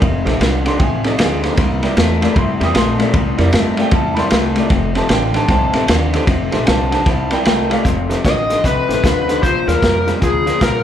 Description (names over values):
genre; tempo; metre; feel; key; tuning
electric blues shuffle; 153 BPM; 4/4; swing 63% on 8ths; F mixolydian; A4 = 440 Hz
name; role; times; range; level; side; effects
electric guitar through a small old amp; riff; 0.0-10.8 s; F2 to A3; -18 LUFS; left 3 dB; spring reverb, slapback echo
upright bass; bass; 0.0-10.8 s; F1 to G2; -21 LUFS; equal; none
crunchy breakbeat drum kit; drums; 0.0-10.7 s; hi-hat, kick drum, ride cymbal, snare drum; -17 LUFS; equal; none
clear upright piano; accompaniment; 0.2-10.5 s; Bb3 to Eb6; -22 LUFS; right 4 dB; slapback echo
smooth overdriven lead guitar; melody; 8.3-10.8 s; Ab4 to Eb5; -17 LUFS; left 3 dB; slapback echo
room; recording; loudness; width
light reverb, small room ambience; live gig heard through the venue's PA, club ambience; -13 LUFS; side -10 dB against mid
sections
0.0-7.8 A section; 7.8-10.8 B section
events
none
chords
0.0 F7; 1.6 C7; 4.7 F7; 7.1 C7; 7.8 F7; 9.4 Bb7